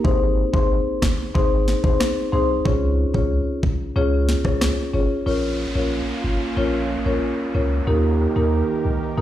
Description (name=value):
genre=dancehall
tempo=92 BPM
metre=4/4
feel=straight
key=Bb dorian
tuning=A4 = 440 Hz
part: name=marimba with medium mallets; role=accompaniment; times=0.0-9.2 s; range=Bb3 to Db5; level=-22 LUFS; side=left 1 dB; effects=none
part: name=punchy sub bass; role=bass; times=0.0-9.2 s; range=G1 to Eb2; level=-22 LUFS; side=equal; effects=none
part: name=island pop drum kit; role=drums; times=0.0-4.8 s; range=kick drum, rim click, snare drum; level=-22 LUFS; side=equal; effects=overdrive
part: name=warm analog pad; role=sustained chords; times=5.3-9.2 s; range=Eb3 to Bb4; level=-27 LUFS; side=right 4 dB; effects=chorus, sidechain pumping
part: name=downlifter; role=sound effects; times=5.3-9.2 s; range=none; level=-32 LUFS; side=right 2 dB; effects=none
room=light reverb, digital ambience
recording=played on a big sound system in a bare room, large studio reverb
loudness=-18 LUFS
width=side -12 dB against mid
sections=0.0-5.3 A section; 5.3-9.2 B section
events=none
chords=0.0 Ab; 2.7 Db; 5.3 Bbm; 7.9 Eb